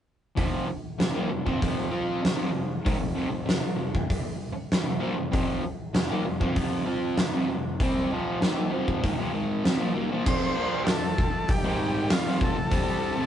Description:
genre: garage rock duo or trio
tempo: 97 BPM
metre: 4/4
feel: straight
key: unclear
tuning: A4 = 441 Hz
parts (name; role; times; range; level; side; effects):
- fuzz guitar; riff; 0.4-13.3 s; F2 to F4; -28 LUFS; equal; distortion
- oversized low-tuned drum kit; drums; 0.4-12.9 s; crash cymbal, hi-hat, kick drum, snare drum; -27 LUFS; equal; none
- overdriven combo organ; melody; 10.3-13.3 s; F4 to C5; -30 LUFS; left 1 dB; none
room: light reverb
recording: rough rehearsal-room recording, nothing above 10.9 kHz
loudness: -24 LUFS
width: side -10 dB against mid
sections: 0.4-10.3 A section; 10.3-13.3 B section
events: none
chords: 0.4 F5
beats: | 0.37 0.99 1.61 2.23 | 2.85 3.47 4.09 4.71 | 5.33 5.95 6.57 7.18 | 7.80 8.42 9.03 9.65 | 10.26 10.88 11.49 12.10 | 12.72

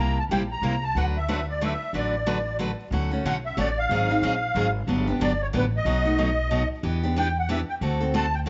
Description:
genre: acoustic string swing (jazz manouche)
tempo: 184 BPM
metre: 3/4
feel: swing 60% on 8ths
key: D major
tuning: A4 = 442 Hz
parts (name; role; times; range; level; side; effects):
- musette accordion; melody; 0.0-8.4 s; B4 to Bb5; -30 LUFS; equal; none
- picked steel-string acoustic guitar; accompaniment; 0.0-8.5 s; B2 to B4; -29 LUFS; equal; none
- upright bass; bass; 0.0-8.5 s; G1 to E2; -30 LUFS; equal; none
room: light reverb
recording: nothing above 7.7 kHz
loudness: -25 LUFS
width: mono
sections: 0.0-2.9 A section; 2.9-8.5 B section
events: none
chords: 0.0 C7; 1.0 D6; 2.9 Dmaj7; 3.9 G#13; 4.9 Gmaj7; 5.9 B7; 6.8 Em7; 7.8 D7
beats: 0.30 0.63 | 0.96 1.29 1.61 | 1.94 2.27 2.60 | 2.92 3.25 3.57 | 3.90 4.23 4.55 | 4.88 5.20 5.53 | 5.86 6.18 6.51 | 6.83 7.16 7.49 | 7.81 8.14 8.46

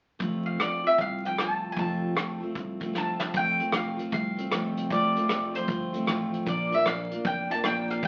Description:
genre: honky-tonk and classic country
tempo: 153 BPM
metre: 4/4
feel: swing 65% on 8ths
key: F major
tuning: A4 = 440 Hz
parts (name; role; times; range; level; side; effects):
- picked steel-string acoustic guitar; accompaniment; 0.2-8.1 s; F2 to F4; -33 LUFS; equal; none
- upright bass; bass; 0.2-8.1 s; F1 to C2; -43 LUFS; equal; none
- soft brush drum kit; drums; 0.2-8.1 s; hi-hat, kick drum, rim click, snare drum; -34 LUFS; equal; none
- mandolin; melody; 0.5-8.1 s; C5 to A5; -30 LUFS; equal; none
room: wet studio reverb, RT60 0.6 s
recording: very old 78 rpm record, vinyl crackle, nothing above 7.5 kHz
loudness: -28 LUFS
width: mono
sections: 0.2-3.3 A section; 3.3-8.1 B section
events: drum fill 2.9-3.3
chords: 0.2 F; 6.5 Bb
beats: | 0.21 0.60 0.99 1.38 | 1.77 2.16 2.55 2.94 | 3.34 3.73 4.12 4.51 | 4.90 5.29 5.68 6.08 | 6.47 6.86 7.25 7.64 | 8.03

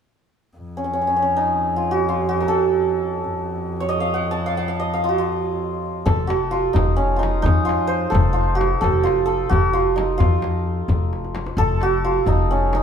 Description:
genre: Persian modal ensemble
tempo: 87 BPM (dotted quarters)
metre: 6/8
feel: straight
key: F dastgah homayun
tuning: A4 = 440 Hz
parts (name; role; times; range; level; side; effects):
- rich double bass; drone; 0.6-6.1 s; F2; -28 LUFS; left 1 dB; none
- santur; melody; 0.8-12.8 s; Db4 to A5; -20 LUFS; right 2 dB; none
- upright bass; bass; 6.1-12.8 s; F1 to F2; -22 LUFS; left 1 dB; none
- frame drum; percussion; 6.1-12.8 s; none; -25 LUFS; left 1 dB; none
- tombak; percussion; 6.1-12.8 s; none; -24 LUFS; left 2 dB; none
room: moderate stone room reverb, RT60 1.2 s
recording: band playing live in one room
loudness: -18 LUFS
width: side -7 dB against mid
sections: 0.6-6.1 A section; 6.1-12.8 B section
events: drum fill 11.1-11.6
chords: none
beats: | 0.55 1.24 | 1.93 2.62 | 3.31 4.00 | 4.69 5.38 | 6.07 6.76 | 7.45 8.14 | 8.83 9.52 | 10.20 10.89 | 11.58 12.27

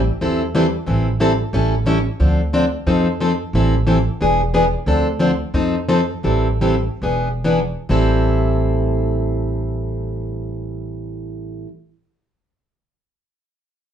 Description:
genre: acoustic string swing (jazz manouche)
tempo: 126-181 BPM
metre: 4/4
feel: swing 59% on 8ths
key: A minor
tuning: A4 = 439 Hz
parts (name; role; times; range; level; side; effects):
- upright bass; bass; 0.0-11.6 s; E1 to F2; -21 LUFS; right 1 dB; none
- picked plugged-in steel-string acoustic guitar; accompaniment; 0.2-11.7 s; A2 to A4; -18 LUFS; left 1 dB; none
room: wet studio reverb, RT60 0.7 s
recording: heard from further back in the room, nothing above 10.9 kHz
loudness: -16 LUFS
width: side -9 dB against mid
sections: 0.0-2.2 A section; 2.2-7.9 B section; 7.9-11.7 C section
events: slowing down 4.9-7.9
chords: 0.0 Am7; 1.5 A7; 2.2 Dm7; 2.9 F7; 3.5 Am7; 4.2 E7; 4.9 Dm7; 5.5 F7; 6.2 Am7; 7.0 E7; 7.9 Am7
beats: 0.22 0.55 | 0.88 1.22 1.55 1.88 | 2.21 2.54 2.87 3.21 | 3.54 3.87 4.20 4.53 | 4.87 5.20 5.54 5.89 | 6.25 6.63 7.03 7.45 | 7.91 8.38 8.85 9.33 | 9.80 10.28 10.75 11.23

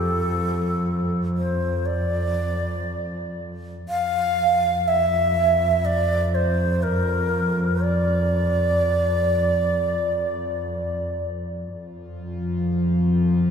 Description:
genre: ambient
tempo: free time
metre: none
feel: none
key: unclear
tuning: A4 = 441 Hz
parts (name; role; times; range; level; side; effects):
- breathy bright long shakuhachi; melody; 0.0-11.3 s; A4 to F5; -22 LUFS; right 1 dB; tape echo
- rich studio double bass section; bass; 0.0-13.5 s; F2; -24 LUFS; equal; none
- overtone-sweeping drone; drone; 12.2-13.5 s; F3 to F4; -22 LUFS; equal; chorus, built-in reverb
room: wet echo chamber reverb, RT60 2.5 s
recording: echo-heavy mix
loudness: -20 LUFS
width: side -7 dB against mid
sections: 0.0-13.5 A section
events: none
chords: 0.0 Bb/F (rootless)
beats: free time

